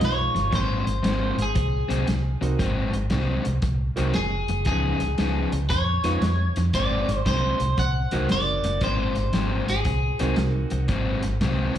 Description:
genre	electric blues shuffle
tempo	116 BPM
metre	4/4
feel	swing 66% on 8ths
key	Ab mixolydian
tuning	A4 = 440 Hz
part	electric guitar at the edge of break-up	melody	0.0-10.3 s	Ab4 to Gb5	-27 LUFS	equal	slapback echo
part	bright upright piano	accompaniment	0.0-10.9 s	Ab3 to Gb4	-33 LUFS	right 7 dB	slapback echo
part	raw garage guitar	riff	0.0-11.8 s	Ab2 to Eb4	-28 LUFS	left 3 dB	overdrive, spring reverb, slapback echo
part	vintage muted fingered electric bass	bass	0.0-11.8 s	Gb1 to F2	-25 LUFS	equal	none
part	vintage drum kit	drums	0.0-11.8 s	hi-hat, kick drum, snare drum	-29 LUFS	equal	none
room	small room ambience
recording	live gig heard through the venue's PA, club reverb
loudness	-21 LUFS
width	side -10 dB against mid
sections	0.0-11.8 A section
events	none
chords	0.0 Db9; 0.5 Ab9; 4.7 Db9; 6.7 Ab9

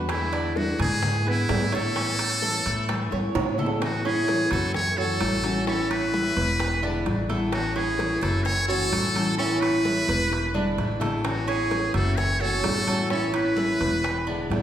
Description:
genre	latin, Cuban son and guajira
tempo	129 BPM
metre	4/4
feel	straight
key	A major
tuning	A4 = 441 Hz
part	picked plugged-in steel-string acoustic guitar	accompaniment	0.0-14.6 s	B2 to F#4	-31 LUFS	left 3 dB	none
part	Cuban tres	arpeggios	0.0-14.6 s	C#4 to C#5	-32 LUFS	right 4 dB	none
part	upright bass	bass	0.0-14.6 s	E1 to A2	-29 LUFS	equal	none
part	trumpet with metal mute	melody	0.1-14.6 s	E4 to C#5	-27 LUFS	equal	none
part	nylon-string guitar	second line	0.1-14.6 s	B3 to A4	-30 LUFS	right 1 dB	none
part	bongos	percussion	0.1-14.6 s	none	-36 LUFS	left 4 dB	none
part	congas	percussion	0.1-14.6 s	none	-33 LUFS	equal	none
part	timbales	percussion	0.1-14.6 s	none	-34 LUFS	right 4 dB	none
room	wet recital hall reverb, RT60 1.4 s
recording	recorded in a church or concert hall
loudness	-22 LUFS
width	side -10 dB against mid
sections	0.0-3.8 A section; 3.8-14.6 B section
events	drum fill 2.9-3.8, 10.3-11.2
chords	0.1 E7; 2.0 Aadd9; 4.7 F#m7; 5.7 Aadd9; 6.6 E7; 7.5 Aadd9; 8.5 F#m7; 9.4 Aadd9; 10.3 E7; 11.2 Aadd9; 12.2 F#m7; 13.1 Aadd9; 14.0 E7

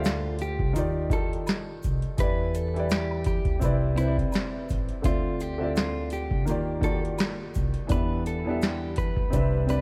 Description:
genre	lo-fi hip hop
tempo	84 BPM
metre	4/4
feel	swing 60% on 16ths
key	unclear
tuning	A4 = 440 Hz
part	clean electric guitar	melody	0.0-9.8 s	E4 to B4	-37 LUFS	equal	subtle chorus, tape echo
part	felt-muted upright piano	accompaniment	0.0-9.8 s	C3 to F5	-32 LUFS	equal	cassette tape
part	upright bass	bass	0.0-9.8 s	A1 to E2	-32 LUFS	equal	none
part	egg shaker and woodblock	percussion	0.0-9.8 s	none	-48 LUFS	equal	none
part	booming analog drum machine	drums	0.1-9.8 s	hi-hat, kick drum, snare drum	-31 LUFS	equal	overdrive
room	light reverb, small room ambience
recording	none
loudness	-27 LUFS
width	mono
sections	0.0-9.8 A section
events	none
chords	0.0 Dm9; 0.8 Ebmaj9; 2.2 Em7; 3.6 Cmaj9; 5.0 Dm9; 6.5 Ebmaj9; 7.9 Em7

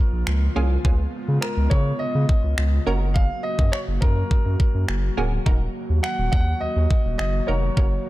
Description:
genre	dance-pop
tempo	104 BPM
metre	4/4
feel	straight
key	Eb minor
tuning	A4 = 444 Hz
part	warm grand piano	melody	0.0-8.1 s	Bb4 to Gb5	-29 LUFS	equal	ping-pong delay
part	airy breathy pad	sustained chords	0.0-8.1 s	Db3 to Gb4	-31 LUFS	equal	chorus, sidechain pumping
part	saturated sub bass	bass	0.1-8.0 s	D1 to Db3	-22 LUFS	equal	sidechain pumping
part	pop drum kit	drums	0.3-7.9 s	finger snaps, kick drum	-21 LUFS	equal	none
part	wavetable chord stab	accompaniment	0.6-8.1 s	Bb3 to Bb4	-29 LUFS	right 3 dB	sidechain pumping
room	little or no reverb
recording	dark, warm production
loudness	-19 LUFS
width	side -17 dB against mid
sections	0.0-8.1 A section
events	none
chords	0.0 Bbm; 0.8 Db7; 2.9 Gb; 5.5 Ebm

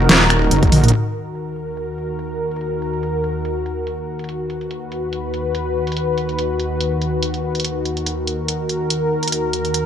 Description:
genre	heavy wobble dubstep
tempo	143 BPM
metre	4/4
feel	swing 55% on 16ths, half-time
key	Eb minor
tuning	A4 = 440 Hz
part	lush unison pad	sustained chords	0.0-9.9 s	Eb2 to B4	-21 LUFS	left 1 dB	chorus, sidechain pumping
part	wobble bass	bass	0.0-0.9 s	Eb1 to Bb1	-16 LUFS	equal	chorus, overdrive
part	dubstep drum kit	drums	0.1-9.8 s	crash cymbal, finger snaps, hi-hat, snare drum, toms	-17 LUFS	equal	overdrive, low-pass filter on hats, low-pass filter on snare, low-pass filter on toms, low-pass filter on cymbals, low-pass filter on room
part	electronic kick drum	drums	0.6-0.7 s	none	-16 LUFS	equal	none
room	light reverb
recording	none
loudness	-18 LUFS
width	side -9 dB against mid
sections	0.9-9.9 A section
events	drum fill 0.5-0.9; filter sweep on drum 0.9-9.9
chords	0.0 Ebm; 4.3 B/D#; 7.6 Ebm

